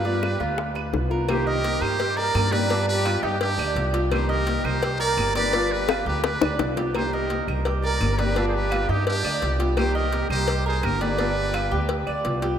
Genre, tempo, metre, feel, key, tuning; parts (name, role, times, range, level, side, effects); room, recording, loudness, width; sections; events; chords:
latin, Cuban son and guajira; 170 BPM; 4/4; straight; C minor; A4 = 440 Hz
trumpet with metal mute; melody; 0.0-12.3 s; G4 to D5; -29 LUFS; right 1 dB
breathy mellow jazz flute; second line; 0.0-12.2 s; D4 to B4; -30 LUFS; right 3 dB
nylon-string guitar; accompaniment; 0.0-12.6 s; C3 to G4; -30 LUFS; left 3 dB
Cuban tres; arpeggios; 0.0-12.6 s; D4 to Eb5; -28 LUFS; right 3 dB
upright bass; bass; 0.0-12.6 s; G1 to G2; -26 LUFS; equal
bongos and cowbell; percussion; 0.0-12.6 s; -30 LUFS; left 6 dB
claves; percussion; 0.2-12.2 s; -41 LUFS; right 8 dB
wet cathedral reverb, RT60 5.0 s; in a vast, echoing space; -21 LUFS; side -9 dB against mid
0.0-1.3 A section; 1.3-12.6 B section
drum fill 5.9-6.9
0.0 G7; 1.3 Cm9; 2.7 G7; 4.1 Cm9; 5.5 G7; 6.9 Cm9; 8.4 G7; 9.8 Cm9; 11.2 G7